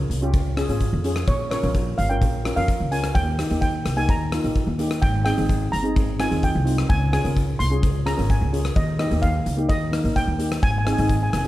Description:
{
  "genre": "calypso",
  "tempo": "128 BPM",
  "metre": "4/4",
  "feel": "straight",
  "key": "Ab major",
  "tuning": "A4 = 442 Hz",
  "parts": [
    { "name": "steel pan", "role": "melody", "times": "0.0-11.5 s", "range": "Db5 to C6", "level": "-27 LUFS", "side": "right 1 dB", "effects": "none" },
    { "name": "steel pan", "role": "accompaniment", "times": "0.0-11.5 s", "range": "Bb3 to Bb4", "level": "-26 LUFS", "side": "left 1 dB", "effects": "none" },
    { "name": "upright bass", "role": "bass", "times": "0.0-11.5 s", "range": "F1 to F2", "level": "-23 LUFS", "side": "equal", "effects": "none" },
    { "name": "gated 80s drum kit", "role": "drums", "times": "0.1-11.5 s", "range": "hi-hat, kick drum, rim click", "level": "-24 LUFS", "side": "left 1 dB", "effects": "none" }
  ],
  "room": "light reverb",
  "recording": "dark, warm production",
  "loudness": "-19 LUFS",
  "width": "side -15 dB against mid",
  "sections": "0.0-11.5 A section",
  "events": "none",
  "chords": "0.0 Dbmaj7; 1.3 Bbm; 3.1 Eb; 5.0 Abmaj7; 6.9 Db; 8.8 Eb7; 10.6 Ab"
}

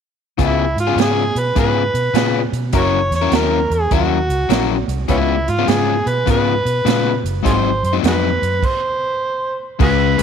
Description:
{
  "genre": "electric blues shuffle",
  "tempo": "102 BPM",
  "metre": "4/4",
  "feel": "swing 66% on 8ths",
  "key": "Db mixolydian",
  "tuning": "A4 = 440 Hz",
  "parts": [
    { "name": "overdriven harmonica", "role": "melody", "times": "0.4-10.2 s", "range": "Cb4 to Db5", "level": "-19 LUFS", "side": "right 2 dB", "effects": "none" },
    { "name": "overdriven semi-hollow guitar", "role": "riff", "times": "0.4-10.2 s", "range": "Ab2 to Bb4", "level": "-19 LUFS", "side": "left 13 dB", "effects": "none" },
    { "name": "vintage muted fingered electric bass", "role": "bass", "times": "0.4-10.2 s", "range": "Gb1 to Cb3", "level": "-21 LUFS", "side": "right 1 dB", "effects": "none" },
    { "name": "swinging big-band drum kit", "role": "drums", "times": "0.4-10.2 s", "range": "crash cymbal, hi-hat, kick drum, snare drum", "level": "-21 LUFS", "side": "right 6 dB", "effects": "none" }
  ],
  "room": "light reverb, small room ambience",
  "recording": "1960s-style stereo with parts hard left and right",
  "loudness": "-14 LUFS",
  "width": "side -7 dB against mid",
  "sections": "0.4-9.8 A section",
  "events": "stop 8.6-9.8",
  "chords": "0.4 Db7; 2.7 Gb7; 5.1 Db7; 7.4 Ab7"
}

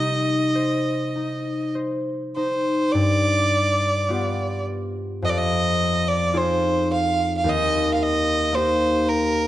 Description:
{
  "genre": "celtic folk, Celtic slow air",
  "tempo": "48-57 BPM",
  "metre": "4/4",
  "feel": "rubato",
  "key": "C minor",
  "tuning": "A4 = 439 Hz",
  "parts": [
    { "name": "rich fiddle", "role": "melody", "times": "0.0-9.5 s", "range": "Bb4 to F5", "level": "-22 LUFS", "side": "right 2 dB", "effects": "none" },
    { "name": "concert harp", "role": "accompaniment", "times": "0.0-9.5 s", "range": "Eb2 to C5", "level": "-22 LUFS", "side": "left 1 dB", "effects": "none" }
  ],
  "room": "moderate scoring stage reverb, RT60 1.5 s",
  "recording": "nothing above 10.6 kHz",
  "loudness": "-19 LUFS",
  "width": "side -14 dB against mid",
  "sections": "0.0-2.9 A section; 2.9-9.5 B section",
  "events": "none",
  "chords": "0.0 Cm; 2.9 G7; 5.2 Fm7; 7.4 Eb"
}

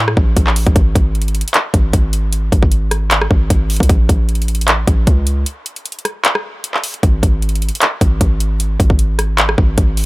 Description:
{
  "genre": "hip hop, trap",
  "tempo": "153 BPM",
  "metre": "4/4",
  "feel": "half-time",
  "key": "unclear",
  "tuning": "A4 = 440 Hz",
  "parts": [
    { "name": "hard-hitting 808-style bass", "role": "bass", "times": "0.0-10.1 s", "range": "G#1 to A2", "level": "-15 LUFS", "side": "equal", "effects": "none" },
    { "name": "trap drum kit", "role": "drums", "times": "0.1-10.1 s", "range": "handclaps, hi-hat, kick drum, rim click", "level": "-14 LUFS", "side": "equal", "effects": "none" }
  ],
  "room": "little or no reverb",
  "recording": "none",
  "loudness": "-12 LUFS",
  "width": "side -21 dB against mid",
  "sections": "0.0-7.0 A section; 7.0-10.1 A section",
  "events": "break 5.5-7.0",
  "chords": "none"
}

